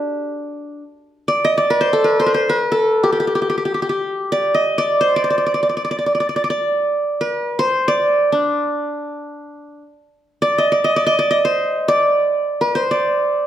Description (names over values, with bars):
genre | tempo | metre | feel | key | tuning
Turkish makam ensemble | free time | none | none | D makam hicaz | A4 = 439 Hz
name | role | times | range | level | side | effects
qanun | solo | 0.0-13.5 s | D4 to Eb5 | -16 LUFS | equal | none
room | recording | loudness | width
moderate recital hall reverb, RT60 1.3 s | none | -15 LUFS | side -11 dB against mid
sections
0.0-1.0 A section; 1.0-10.2 A section; 10.2-13.5 A section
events
none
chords
none